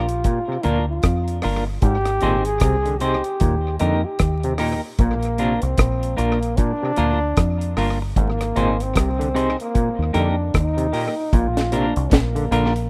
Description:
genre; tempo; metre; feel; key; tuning
roots reggae; 76 BPM; 4/4; swing 60% on 16ths; Bb mixolydian; A4 = 440 Hz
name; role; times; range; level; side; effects
warm trombone; melody; 0.0-12.9 s; Bb3 to Ab4; -27 LUFS; equal; tape echo
semi-hollow electric guitar; accompaniment; 0.0-12.7 s; Bb3 to C5; -28 LUFS; equal; tremolo, tape echo
deep dub fingered electric bass; bass; 0.0-12.9 s; G1 to F2; -25 LUFS; equal; none
deep reggae drum kit; drums; 0.1-12.9 s; hi-hat, kick drum, rim click, snare drum; -23 LUFS; equal; tape echo
overdriven clav; arpeggios; 0.2-12.7 s; Ab2 to D3; -29 LUFS; equal; none
room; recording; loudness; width
small room ambience; rough home demo mix, vinyl crackle; -20 LUFS; mono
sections
0.0-11.3 A section; 11.3-12.9 B section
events
none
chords
0.0 Bb; 1.8 Ab; 3.4 Eb; 5.0 Bb; 8.2 Ab; 9.7 Eb; 11.3 Bb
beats
0.24 1.03 | 1.83 2.62 3.41 4.20 | 4.99 5.79 6.58 7.37 | 8.16 8.95 9.74 10.54 | 11.33 12.12

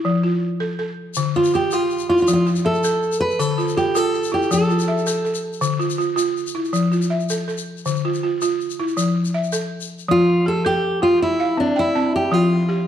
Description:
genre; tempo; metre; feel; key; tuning
west african traditional, West African string and xylophone music; 108 BPM (dotted quarters); 12/8; straight; F major; A4 = 440 Hz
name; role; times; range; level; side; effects
balafon; arpeggios; 0.0-12.9 s; D3 to A5; -20 LUFS; equal; none
tube shaker; percussion; 1.1-10.0 s; none; -32 LUFS; left 8 dB; none
fingerpicked steel-string acoustic guitar; melody; 1.4-5.4, 10.1-12.9 s; D4 to B4; -19 LUFS; equal; none
room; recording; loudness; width
moderate recital hall reverb, RT60 1.5 s; dark, warm production; -17 LUFS; side -10 dB against mid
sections
0.0-10.1 A section; 10.1-12.9 B section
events
none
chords
0.0 F; 1.2 Dm; 2.3 F; 3.4 Dm; 4.5 F; 5.6 Dm; 6.7 F; 7.9 Dm; 9.0 F; 11.2 C; 12.3 F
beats
0.04 0.60 | 1.16 1.72 2.27 2.83 | 3.39 3.95 4.51 5.06 | 5.62 6.18 6.74 7.30 | 7.85 8.41 8.97 9.53 | 10.09 10.64 11.20 11.76 | 12.32

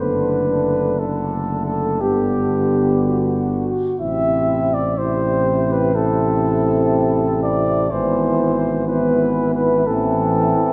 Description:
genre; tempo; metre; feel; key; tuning
classical, hymn-like piece for brass band; 61 BPM; 4/4; rubato; unclear; A4 = 440 Hz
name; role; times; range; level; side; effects
mellow flugelhorn; melody; 0.0-10.7 s; G4 to E5; -23 LUFS; equal; none
mellow French horn section; second line; 0.0-10.7 s; D4 to G4; -28 LUFS; equal; none
brilliant trombone; accompaniment; 0.0-10.7 s; C3 to E3; -28 LUFS; equal; none
clear euphonium; accompaniment; 0.0-10.7 s; A3 to C4; -26 LUFS; equal; none
dark tuba; bass; 0.0-10.6 s; F#1 to A1; -25 LUFS; equal; none
room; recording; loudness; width
wet cathedral reverb, RT60 4.0 s; none; -19 LUFS; mono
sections
0.0-10.7 A section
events
none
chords
0.0 D/F#; 2.0 G; 4.0 Am; 7.9 E/G#; 9.9 Am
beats
| 0.00 1.00 2.01 3.02 | 4.01 4.98 5.95 6.93 | 7.92 8.89 9.87

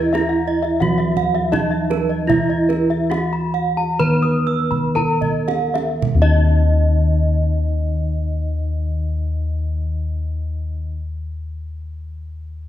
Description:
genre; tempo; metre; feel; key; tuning
Balinese gamelan; 54-94 BPM; 4/4; straight; Eb pelog; A4 = 440 Hz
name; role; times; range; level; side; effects
gamelan-type bronze metallophone; melody; 0.0-10.9 s; Eb4 to Cb5-40c; -23 LUFS; right 2 dB; none
gamelan-type bronze metallophone; accompaniment; 0.0-10.9 s; Eb3 to Cb4-40c; -26 LUFS; equal; none
gamelan-type bronze metallophone; arpeggios; 0.0-10.9 s; Eb5 to Eb6; -25 LUFS; left 5 dB; none
gamelan-type bossed gongs; bass; 0.0-10.9 s; Eb2 to Fb4; -20 LUFS; left 1 dB; none
kendang; percussion; 0.1-6.5 s; none; -27 LUFS; right 5 dB; none
gamelan-type bronze metallophone; arpeggios; 0.5-10.9 s; Cb5-40c to Fb6; -26 LUFS; right 7 dB; none
room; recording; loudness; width
moderate recital hall reverb, RT60 1.4 s; dark, warm production; -16 LUFS; side -12 dB against mid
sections
0.0-6.0 A section; 6.0-10.5 B section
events
slowing down 0.0-6.0; drum fill 4.7-6.0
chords
none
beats
0.14 0.81 1.52 | 2.29 3.11 3.99 4.96 | 6.02 7.13 8.25 9.36

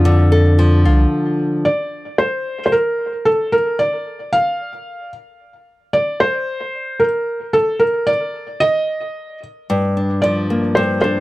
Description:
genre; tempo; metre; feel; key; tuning
folktronica; 112 BPM; 4/4; swing 56% on 16ths; G minor; A4 = 441 Hz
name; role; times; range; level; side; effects
felt-muted upright piano; melody; 0.0-11.2 s; A4 to F5; -17 LUFS; equal; none
nylon-string guitar; arpeggios; 0.0-1.7, 9.7-11.2 s; G2 to A4; -16 LUFS; left 1 dB; tape echo
round analog bass; bass; 0.0-1.1 s; C2 to F2; -12 LUFS; equal; none
room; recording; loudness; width
light reverb; dry, close 1970s-style studio recording; -15 LUFS; side -18 dB against mid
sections
0.0-1.1 A section; 1.1-11.2 B section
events
none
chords
0.0 Dm; 1.1 N.C.; 9.7 Gm7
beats
0.06 0.59 | 1.13 1.66 2.20 2.73 | 3.27 3.81 4.34 4.88 | 5.41 5.95 6.48 7.02 | 7.55 8.09 8.63 9.16 | 9.70 10.23 10.77

